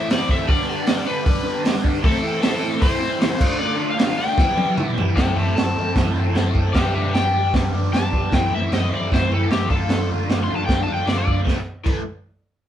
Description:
garage rock duo or trio; 153 BPM; 4/4; straight; A minor; A4 = 440 Hz
overdriven slide guitar; melody; 0.0-11.4 s; G4 to C6; -24 LUFS; left 3 dB
overdriven electric guitar; riff; 0.0-12.0 s; G2 to A4; -23 LUFS; equal; phaser
crunchy breakbeat drum kit; drums; 0.1-12.0 s; crash cymbal, hi-hat, kick drum, snare drum, toms; -20 LUFS; equal
moderate studio reverb, RT60 0.5 s; band playing live in one room; -18 LUFS; side -10 dB against mid
0.0-5.2 A section; 5.2-11.5 B section; 11.5-12.7 C section
drum fill 4.4-5.2; electric slide guitar solo 5.2-11.5
0.5 G; 2.0 Am; 3.4 Dm; 4.4 Em; 5.2 Am; 6.7 G; 8.3 Am; 9.7 Dm; 11.5 A5

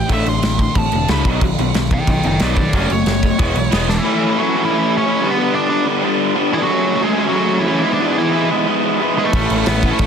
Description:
punk rock; 182 BPM; 4/4; straight; A major; A4 = 440 Hz
nasal lead guitar with a parked wah; melody; 0.0-10.1 s; E3 to C6; -20 LUFS; right 1 dB; overdrive
raw garage guitar; riff; 0.0-10.1 s; F#2 to E4; -17 LUFS; left 1 dB; overdrive
growling picked electric bass; bass; 0.1-4.0, 9.3-10.1 s; E1 to C#2; -20 LUFS; equal; overdrive
loose indie drum kit; drums; 0.1-4.0, 9.3-10.1 s; crash cymbal, kick drum, snare drum; -19 LUFS; equal
little or no reverb; dense, heavily limited modern master; -14 LUFS; side -7 dB against mid
0.0-4.1 A section; 4.1-10.1 B section
lead electric guitar solo 0.0-4.1; drum fill 3.9
0.1 D5/A; 1.3 B; 2.7 F#m; 3.4 E; 4.1 A; 5.2 G; 6.7 F#m; 7.9 E/G#; 9.3 A

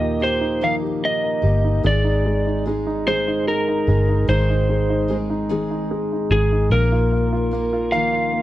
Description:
six-eight pop ballad; 49 BPM (dotted quarters); 6/8; straight; A4 = 440 Hz
electric slide guitar; melody; 0.0-8.4 s; Ab4 to F5; -22 LUFS; equal
warm concert grand piano; accompaniment; 0.0-8.4 s; Bb2 to G4; -23 LUFS; right 3 dB
picked steel-string acoustic guitar; arpeggios; 0.0-8.4 s; Ab2 to Bb4; -28 LUFS; left 10 dB
vintage muted fingered electric bass; bass; 0.0-8.4 s; G1 to Eb2; -21 LUFS; equal
small room ambience; dry, close 1970s-style studio recording; -17 LUFS; side -14 dB against mid
0.0-8.4 A section
0.0 Ebadd9; 1.8 Ab; 6.7 Bbsus4

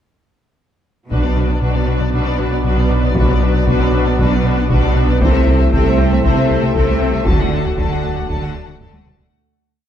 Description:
cinematic, hybrid orchestral and electronic film score; 117 BPM; 4/4; straight; B phrygian; A4 = 444 Hz
rich symphonic violin section; melody; 1.1-9.3 s; B4 to A5; -26 LUFS; left 6 dB
warm symphonic violin section; second line; 1.1-9.3 s; D4 to C5; -26 LUFS; left 5 dB
clear symphonic viola section; accompaniment; 1.1-9.3 s; F#3 to D4; -24 LUFS; right 3 dB
dark French horn section; sustained chords; 1.1-9.1 s; F#3 to F#4; -25 LUFS; left 3 dB
phased analog pad; sustained chords; 1.6-9.3 s; F#3 to F#5; -23 LUFS; equal; phaser, chorus
round analog bass; riff; 1.1-9.3 s; C2 to B3; -22 LUFS; left 2 dB
pure sine sub bass; bass; 1.1-9.3 s; D1 to C2; -21 LUFS; equal
rich symphonic cello section; bass; 1.1-9.3 s; B2 to D3; -22 LUFS; right 2 dB
rich symphonic double bass section; bass; 1.1-9.3 s; B1 to D2; -21 LUFS; right 3 dB
taiko ensemble; drums; 1.1-9.4 s; -21 LUFS; equal
moderate scoring stage reverb, RT60 1.7 s; dark, warm production; -13 LUFS; side -10 dB against mid
1.1-9.3 theme
fade-out 7.3-9.3; drum fill 8.8-9.3
1.1 Bm; 5.2 Am/C; 7.3 D

